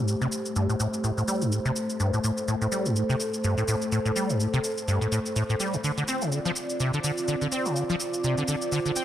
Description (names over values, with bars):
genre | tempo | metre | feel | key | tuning
acid house | 125 BPM | 4/4 | swing 57% on 16ths | A minor | A4 = 439 Hz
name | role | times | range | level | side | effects
dark analog pad | sustained chords | 0.0-9.0 s | A3 to D5 | -29 LUFS | equal | chorus
acid bass, saw | riff | 0.0-9.0 s | G2 to C4 | -26 LUFS | equal | tube saturation, ensemble chorus, cassette tape, dub echo
shaker | drums | 0.1-9.0 s | none | -34 LUFS | equal | overdrive
room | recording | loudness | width
moderate spring reverb, RT60 2.1 s | none | -24 LUFS | side -11 dB against mid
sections
0.0-9.0 A section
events
none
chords
0.0 Am7; 5.8 Dm7